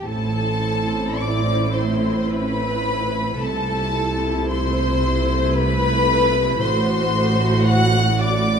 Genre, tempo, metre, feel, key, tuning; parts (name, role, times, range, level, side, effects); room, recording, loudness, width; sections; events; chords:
classical, slow romantic movement for string orchestra; 51-59 BPM; 3/4; rubato; A minor; A4 = 439 Hz
dark studio violin section; melody; 0.0-8.6 s; A5 to F#6; -25 LUFS; left 2 dB
rich studio violin section; second line; 0.0-8.6 s; A4 to F#5; -24 LUFS; left 3 dB
dark studio double bass section; bass; 0.0-8.6 s; A1 to C2; -24 LUFS; right 2 dB
warm studio cello section; bass; 0.0-8.6 s; A2 to C3; -23 LUFS; right 2 dB
warm studio viola section; accompaniment; 0.1-8.6 s; A3 to F#4; -26 LUFS; right 2 dB
wet recital hall reverb, RT60 1.7 s; -17 LUFS; side -7 dB against mid
0.0-8.6 A section
0.0 Am; 3.4 Am/C; 6.6 F#dim/A